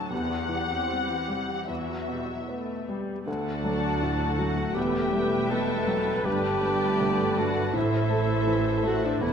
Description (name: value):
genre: cinematic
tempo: 74-82 BPM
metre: 4/4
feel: rubato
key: E minor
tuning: A4 = 440 Hz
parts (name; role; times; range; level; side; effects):
- muted studio violin section; melody; 0.0-9.3 s; D5 to A5; -34 LUFS; left 4 dB; none
- clear grand piano; accompaniment; 0.0-9.3 s; D2 to D4; -31 LUFS; equal; none
- muted studio viola section; accompaniment; 0.0-9.3 s; C3 to B4; -33 LUFS; equal; none
- muted studio cello section; bass; 0.1-9.3 s; D2 to A2; -33 LUFS; right 5 dB; none
- muted studio violin section; second line; 3.3-9.3 s; B4 to A5; -34 LUFS; left 2 dB; none
- warm clarinet; second line; 3.3-9.3 s; D4 to A4; -29 LUFS; equal; none
- mellow French horn section; sustained chords; 3.3-9.3 s; E3 to C5; -32 LUFS; left 4 dB; none
- muted studio double bass section; bass; 3.3-9.3 s; E1 to D2; -34 LUFS; right 4 dB; none
room: moderate scoring stage reverb, RT60 2.0 s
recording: none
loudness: -24 LUFS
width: side -7 dB against mid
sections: 0.0-3.3 A section; 3.3-9.3 A section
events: none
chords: 0.1 C/E; 1.7 Emadd9; 3.3 D; 4.8 Emadd9; 6.3 Gadd9; 7.8 Am